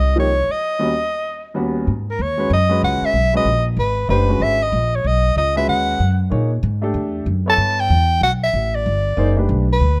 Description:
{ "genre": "modal jazz", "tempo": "189 BPM", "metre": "4/4", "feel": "swing 64% on 8ths", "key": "G# phrygian", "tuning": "A4 = 440 Hz", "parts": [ { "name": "breathy soprano saxophone", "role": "melody", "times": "0.0-10.0 s", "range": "A#4 to A5", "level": "-21 LUFS", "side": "equal", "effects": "none" }, { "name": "upright bass", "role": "bass", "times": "0.0-10.0 s", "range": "F#1 to A#2", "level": "-21 LUFS", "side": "equal", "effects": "none" }, { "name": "clear grand piano", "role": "accompaniment", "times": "0.2-9.7 s", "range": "Eb2 to C#5", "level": "-25 LUFS", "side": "equal", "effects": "none" } ], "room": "little or no reverb", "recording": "close, detailed microphones", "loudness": "-18 LUFS", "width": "mono", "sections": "0.0-1.9 A section; 1.9-10.0 B section", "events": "break 0.6-1.9", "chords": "0.0 F9sus4; 0.6 Eb7alt; 1.9 G#m9; 6.9 Em9" }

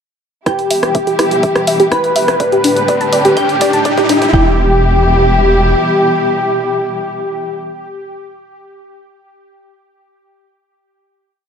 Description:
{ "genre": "melodic techno", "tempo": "124 BPM", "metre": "4/4", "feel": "straight", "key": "E minor", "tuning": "A4 = 440 Hz", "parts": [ { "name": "soft supersaw", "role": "melody", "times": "0.5-7.6 s", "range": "G4 to B4", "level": "-15 LUFS", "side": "left 1 dB", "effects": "cassette tape, sidechain pumping, low-pass filter, digital delay" }, { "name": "glassy wavetable pluck", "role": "second line", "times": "0.5-7.6 s", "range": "G5 to B5", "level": "-23 LUFS", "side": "right 1 dB", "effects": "none" }, { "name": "warm studio string section", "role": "sustained chords", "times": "0.5-7.6 s", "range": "A2 to G4", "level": "-19 LUFS", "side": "left 2 dB", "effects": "sidechain pumping" }, { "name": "soft round pluck", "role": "arpeggios", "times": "0.5-4.6 s", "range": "D4 to B5", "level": "-15 LUFS", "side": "right 1 dB", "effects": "chorus, sidechain pumping, tape echo" }, { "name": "electronic kick drum", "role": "drums", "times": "0.5-4.4 s", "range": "none", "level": "-18 LUFS", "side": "equal", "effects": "high-pass filter on kick" }, { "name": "punchy analog drum machine", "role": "drums", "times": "0.5-4.3 s", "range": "hi-hat, rim click", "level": "-19 LUFS", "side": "equal", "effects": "none" }, { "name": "riser", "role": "sound effects", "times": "2.1-4.3 s", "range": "none", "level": "-21 LUFS", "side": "right 1 dB", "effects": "none" }, { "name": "dark detuned saw bass", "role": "bass", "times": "0.7-5.7 s", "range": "D1 to E1", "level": "-17 LUFS", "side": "equal", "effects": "sidechain pumping, high-pass filter" } ], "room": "moderate lush hall reverb, RT60 1.7 s", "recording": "none", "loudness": "-10 LUFS", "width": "side -7 dB against mid", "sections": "0.5-4.3 build; 4.3-8.2 final chord", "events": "build-up 0.5-4.3; filter sweep on synth arpeggio sound 0.5-4.3; filter sweep on supersaw synth 0.5-4.3; riser 2.1-4.3; drum fill 2.4-4.3", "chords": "0.5 Em; 2.4 Dsus4/E; 4.3 Em" }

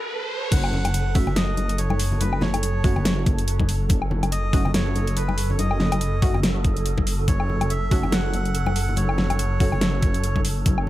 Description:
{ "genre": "deep dubstep", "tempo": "142 BPM", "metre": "4/4", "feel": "swing 57% on 16ths, half-time", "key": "F# dorian", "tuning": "A4 = 440 Hz", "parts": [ { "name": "melodica", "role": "melody", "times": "0.0-10.4 s", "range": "B4 to F#5", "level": "-31 LUFS", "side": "equal", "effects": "dub echo" }, { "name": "riser", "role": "sound effects", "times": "0.0-0.5 s", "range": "none", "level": "-31 LUFS", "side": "right 2 dB", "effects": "none" }, { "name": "wind-like tuned noise texture", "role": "texture", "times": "0.0-10.9 s", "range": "A4", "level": "-33 LUFS", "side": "right 6 dB", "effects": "built-in reverb" }, { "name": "dark detuned saw bass", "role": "bass", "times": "0.5-10.9 s", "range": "F#1", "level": "-23 LUFS", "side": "equal", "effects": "none" }, { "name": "dubstep drum kit", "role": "drums", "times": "0.5-10.9 s", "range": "crash cymbal, hi-hat, snare drum, woodblock", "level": "-27 LUFS", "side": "left 1 dB", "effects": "none" }, { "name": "electronic kick drum", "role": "drums", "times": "0.5-10.8 s", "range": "none", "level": "-21 LUFS", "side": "equal", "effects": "none" }, { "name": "congas", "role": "percussion", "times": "0.5-10.9 s", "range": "none", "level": "-30 LUFS", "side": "left 2 dB", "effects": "dub echo" }, { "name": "filtered dub chord stab", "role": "stabs", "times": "1.2-9.7 s", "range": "A3 to F#4", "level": "-34 LUFS", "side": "right 1 dB", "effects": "chorus, cassette tape, dub echo" } ], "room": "digital ambience", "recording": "echo-heavy mix", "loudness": "-20 LUFS", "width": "side -15 dB against mid", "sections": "0.5-10.9 A section", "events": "riser 0.0-0.5; drop 0.5-10.9", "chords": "0.0 N.C.; 0.5 F#m" }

